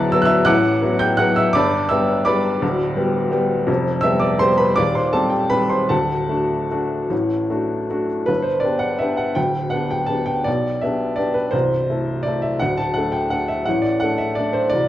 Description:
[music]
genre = classical, piano waltz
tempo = 146-180 BPM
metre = 3/4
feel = rubato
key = G major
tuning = A4 = 440 Hz
[part]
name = clear upright piano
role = solo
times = 0.0-14.9 s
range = C1 to A6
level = -17 LUFS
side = equal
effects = none
[sound]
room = moderate recital hall reverb, RT60 1.4 s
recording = worn, warbling old tape, cassette tape, warbly pitch drift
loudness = -17 LUFS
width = side -13 dB against mid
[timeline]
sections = 0.0-8.3 A section; 8.3-14.9 B section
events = none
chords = 0.0 D69; 1.6 G; 3.7 G7/F; 4.8 Cm/Eb; 5.9 D; 8.3 G; 10.5 G/B; 11.5 Am/C; 12.6 D5

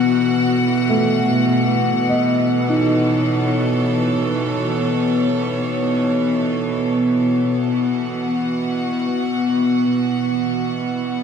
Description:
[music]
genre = ambient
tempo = free time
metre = none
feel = none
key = unclear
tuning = A4 = 440 Hz
[part]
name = bright chamber string section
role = sustained chords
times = 0.0-11.2 s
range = B2 to F#5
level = -17 LUFS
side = equal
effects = none
[part]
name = felt-muted upright piano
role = arpeggios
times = 0.0-6.7 s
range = A3 to D#5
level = -23 LUFS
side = right 1 dB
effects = tape echo
[part]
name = analog drone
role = drone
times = 8.1-11.2 s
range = B3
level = -27 LUFS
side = right 1 dB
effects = none
[sound]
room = wet lush hall reverb, RT60 2.8 s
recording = dark, warm production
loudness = -16 LUFS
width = side -7 dB against mid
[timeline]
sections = 0.0-6.7 A section; 6.7-11.2 B section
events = none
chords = 0.0 Aadd9/B

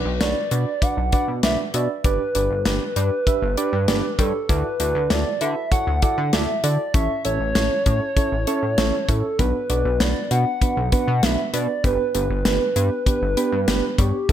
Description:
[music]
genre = synth-pop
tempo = 98 BPM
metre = 4/4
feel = straight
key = unclear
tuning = A4 = 440 Hz
[part]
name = hollow clarinet-like synth lead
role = melody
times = 0.0-14.3 s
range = G4 to F#5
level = -24 LUFS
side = equal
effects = chorus, ping-pong delay
[part]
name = soft electric-piano-like synth keys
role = accompaniment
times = 0.0-14.3 s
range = B3 to E5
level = -26 LUFS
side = right 5 dB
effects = chorus
[part]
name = chorused synth bass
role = bass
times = 0.0-14.3 s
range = G1 to D3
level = -23 LUFS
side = left 1 dB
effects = none
[part]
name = modern studio drum kit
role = drums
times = 0.2-14.3 s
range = hi-hat, kick drum, snare drum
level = -22 LUFS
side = left 1 dB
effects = gated reverb
[sound]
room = light reverb, studio reverb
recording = none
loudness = -18 LUFS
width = side -10 dB against mid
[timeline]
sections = 0.0-14.3 A section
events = none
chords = 0.0 Bm; 2.0 G; 4.5 Dadd9; 6.9 A; 9.4 Bm; 11.8 G

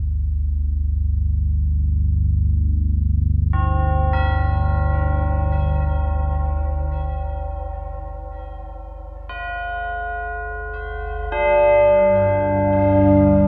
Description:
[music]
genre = dark ambient drone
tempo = free time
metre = none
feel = none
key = G minor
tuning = A4 = 440 Hz
[part]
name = deep rumbling drone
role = drone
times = 0.0-13.5 s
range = G1 to D2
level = -23 LUFS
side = equal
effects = built-in reverb, lush chorus
[part]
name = tubular bells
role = arpeggios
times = 3.5-13.5 s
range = C4 to Bb4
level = -23 LUFS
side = equal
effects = tape echo
[part]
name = dark analog pad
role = sustained chords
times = 11.8-13.5 s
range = G3 to D4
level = -21 LUFS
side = equal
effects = chorus, phaser
[part]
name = bubbling stepped-filter texture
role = texture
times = 11.3-13.5 s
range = F5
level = -44 LUFS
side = equal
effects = none
[sound]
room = wet cathedral reverb, RT60 5.0 s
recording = small room reverb, faint mains hum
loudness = -20 LUFS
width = mono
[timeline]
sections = 0.0-11.3 A section; 11.3-13.5 B section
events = none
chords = 0.0 Gmadd11; 11.3 G5

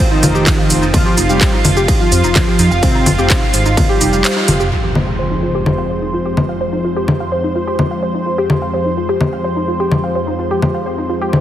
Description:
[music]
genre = melodic techno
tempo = 127 BPM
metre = 4/4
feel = straight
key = F minor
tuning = A4 = 440 Hz
[part]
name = lush unison pad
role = sustained chords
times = 0.0-11.4 s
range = F2 to C5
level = -19 LUFS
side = equal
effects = chorus, sidechain pumping
[part]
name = woody wave-folded pluck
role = arpeggios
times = 0.0-11.4 s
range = Eb4 to F5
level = -20 LUFS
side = equal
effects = analog chorus, sidechain pumping, ping-pong delay
[part]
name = analog synth brass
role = melody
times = 0.1-4.6 s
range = C3 to G4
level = -18 LUFS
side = equal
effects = chorus, vintage 12-bit sampler grit, sidechain pumping, ping-pong delay
[part]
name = swelling detuned saw bass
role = bass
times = 0.2-4.7 s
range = F1 to F2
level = -16 LUFS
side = equal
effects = sidechain pumping
[part]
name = house drum kit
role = drums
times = 0.2-11.4 s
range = congas, handclaps, hi-hat, ride cymbal, shaker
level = -16 LUFS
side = left 1 dB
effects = none
[part]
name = electronic kick drum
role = drums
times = 0.5-3.9 s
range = none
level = -15 LUFS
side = equal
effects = distortion
[part]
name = impact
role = sound effects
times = 4.7-6.6 s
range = none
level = -22 LUFS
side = equal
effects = none
[sound]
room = moderate lush hall reverb, RT60 1.6 s, digital ambience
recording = heavily compressed radio sound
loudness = -12 LUFS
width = side -11 dB against mid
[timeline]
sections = 0.0-4.7 A section; 4.7-11.4 B section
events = drop 0.0-4.7; kick drops out 4.2-4.7; band accent 4.2; impact 4.7-6.6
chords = 0.0 F5; 4.7 Fm

